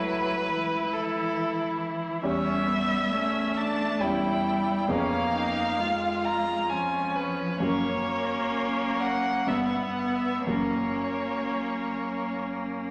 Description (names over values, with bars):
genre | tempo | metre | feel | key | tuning
classical, slow romantic movement for piano quartet | 59-70 BPM | 3/4 | rubato | unclear | A4 = 442 Hz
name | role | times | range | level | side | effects
rich violin | melody | 0.0-12.4 s | A4 to A#5 | -32 LUFS | equal | none
rich cello | second line | 0.0-12.9 s | E3 to B3 | -33 LUFS | equal | none
rich viola | accompaniment | 0.0-12.9 s | B3 to E#4 | -33 LUFS | equal | none
warm concert grand piano | accompaniment | 0.0-12.9 s | C#2 to A4 | -35 LUFS | equal | none
room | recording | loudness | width
wet recital hall reverb, RT60 1.6 s | none | -27 LUFS | mono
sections
0.0-12.9 A section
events
none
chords
0.0 A/C#; 2.2 C#dim/E; 4.9 C#7/E#; 7.6 F#; 9.5 Em/G; 10.5 F#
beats
0.49 1.38 | 2.24 3.12 4.01 | 4.90 5.79 6.70 | 7.61 8.53 9.48 | 10.48 11.48 12.47